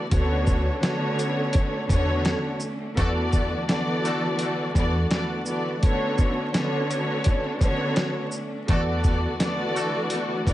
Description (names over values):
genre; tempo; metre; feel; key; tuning
hip hop, boom-bap hip-hop; 84 BPM; 4/4; swing 55% on 16ths; B minor; A4 = 440 Hz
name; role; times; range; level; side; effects
warm symphonic string section; accompaniment; 0.0-10.5 s; D3 to D5; -25 LUFS; equal; high-pass filter, low-pass filter
rich studio string section; sustained chords; 0.0-10.5 s; D3 to F#4; -33 LUFS; equal; high-pass filter, low-pass filter
upright bass; bass; 0.1-10.5 s; D2 to E2; -27 LUFS; equal; none
dusty soul sampler-style drum kit; drums; 0.1-10.5 s; hi-hat, kick drum, shaker, snare drum; -24 LUFS; equal; none
clear horn section; stabs; 3.0-4.3, 8.7-10.0 s; A3 to A4; -33 LUFS; left 1 dB; high-pass filter, low-pass filter, digital delay
room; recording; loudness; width
light reverb, small room reverb; vinyl crackle, nothing above 10.5 kHz; -22 LUFS; side -14 dB against mid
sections
0.0-10.5 A section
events
none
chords
0.1 Bm9/D; 3.0 E9sus4; 5.8 Bm9/D; 8.7 E9sus4